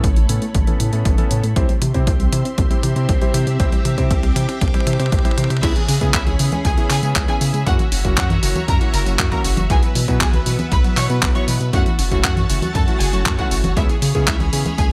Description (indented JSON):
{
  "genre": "italo disco",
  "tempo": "118 BPM",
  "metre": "4/4",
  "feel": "straight",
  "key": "unclear",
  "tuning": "A4 = 440 Hz",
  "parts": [
    { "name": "string machine, full ensemble", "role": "sustained chords", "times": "0.0-14.9 s", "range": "A3 to D6", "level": "-31 LUFS", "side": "equal", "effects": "ensemble chorus" },
    { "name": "soft round pluck", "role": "arpeggios", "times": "0.0-14.9 s", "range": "C#3 to C4", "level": "-30 LUFS", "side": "equal", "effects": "chorus, digital delay" },
    { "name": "warm electric grand piano", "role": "stabs", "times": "0.0-14.7 s", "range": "F#3 to C5", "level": "-30 LUFS", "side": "equal", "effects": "low-pass filter" },
    { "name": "round analog bass", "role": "bass", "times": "0.0-14.9 s", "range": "F#1 to C#3", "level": "-22 LUFS", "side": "equal", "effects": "none" },
    { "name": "clean 12-bit digital drum machine", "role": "drums", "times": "0.0-14.9 s", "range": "congas, crash cymbal, handclaps, hi-hat, tambourine, toms", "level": "-26 LUFS", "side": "equal", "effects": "high-pass filter on hats, studio reverb, high-pass filter on snare, high-pass filter on toms, high-pass filter on cymbals, high-pass filter on perc" },
    { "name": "electronic kick drum", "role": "drums", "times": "0.0-14.9 s", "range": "none", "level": "-21 LUFS", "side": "equal", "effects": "studio reverb" },
    { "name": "rich studio violin section", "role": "melody", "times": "5.6-14.9 s", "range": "E4 to C#6", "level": "-28 LUFS", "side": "equal", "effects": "digital delay" }
  ],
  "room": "digital ambience",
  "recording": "none",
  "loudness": "-18 LUFS",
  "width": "mono",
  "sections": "0.0-5.6 A section; 5.6-14.9 B section",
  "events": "drum fill 0.0-5.6; filter sweep on synth arpeggio sound 0.0-5.6; filter sweep on electric grand piano 0.0-5.6; filter sweep on string machine 0.0-5.6",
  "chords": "0.0 Aadd9; 1.6 C; 5.6 C#m7; 7.7 F#7; 9.7 Bsus4; 11.7 F#m7; 13.8 C#m7"
}